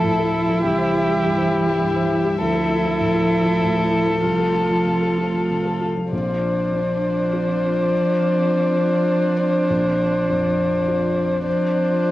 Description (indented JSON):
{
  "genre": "neoclassical piano and strings",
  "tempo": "101 BPM",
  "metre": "3/4",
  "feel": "rubato",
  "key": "unclear",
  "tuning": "A4 = 443 Hz",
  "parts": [
    { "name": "dark violin", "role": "melody", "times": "0.0-12.1 s", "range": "G4 to C5", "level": "-22 LUFS", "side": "left 3 dB", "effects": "cassette tape" },
    { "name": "dark cello", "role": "second line", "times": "0.0-12.1 s", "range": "E3 to F3", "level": "-23 LUFS", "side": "right 2 dB", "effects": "cassette tape" },
    { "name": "dark viola", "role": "accompaniment", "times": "0.0-12.1 s", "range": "D4 to F4", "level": "-24 LUFS", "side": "right 2 dB", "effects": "cassette tape" },
    { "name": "felt-muted upright piano", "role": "accompaniment", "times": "0.0-12.1 s", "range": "Bb1 to C5", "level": "-26 LUFS", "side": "left 2 dB", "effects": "cassette tape" },
    { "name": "warm chamber string section", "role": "sustained chords", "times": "0.0-12.1 s", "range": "F3 to F5", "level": "-30 LUFS", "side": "right 1 dB", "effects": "cassette tape" }
  ],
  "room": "light reverb, studio ambience",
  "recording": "home recording on cassette",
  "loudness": "-17 LUFS",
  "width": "side -15 dB against mid",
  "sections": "0.0-6.1 A section; 6.1-12.1 B section",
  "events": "none",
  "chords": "0.0 Dmadd9; 0.6 C; 2.4 Dmadd9; 4.2 F/C; 6.1 Bbadd9"
}